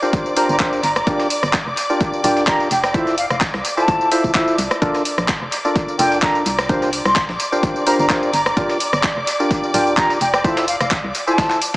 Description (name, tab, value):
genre	piano house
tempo	128 BPM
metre	4/4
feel	swing 54% on 16ths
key	G dorian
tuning	A4 = 440 Hz
part	clear studio string section	sustained chords	0.0-11.8 s	D5 to D6	-25 LUFS	equal	sidechain pumping
part	percussive organ stab	riff	0.0-11.6 s	D4 to E5	-20 LUFS	equal	wide subtle chorus, sidechain pumping, dub echo
part	house drum kit	drums	0.0-11.8 s	handclaps, hi-hat, rim click, tambourine	-22 LUFS	equal	dub echo
part	breakbeat sampler-style drum kit	drums	0.1-11.8 s	hi-hat, snare drum	-31 LUFS	equal	none
part	electronic kick drum	drums	0.1-11.8 s	none	-22 LUFS	equal	none
part	mellow concert flute	melody	0.4-11.6 s	F5 to C6	-21 LUFS	equal	dub echo
part	organ-like FM bass	bass	0.5-11.1 s	D1 to C2	-27 LUFS	equal	sidechain pumping
room	wet spring reverb, RT60 1.7 s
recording	echo-heavy mix, small speaker sound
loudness	-15 LUFS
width	side -20 dB against mid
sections	0.0-11.8 A section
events	none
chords	0.0 C9sus4; 0.8 Gm7; 2.7 Fmaj7; 4.8 Bbmaj7; 6.7 C9sus4; 8.3 Gm7; 10.2 Fmaj7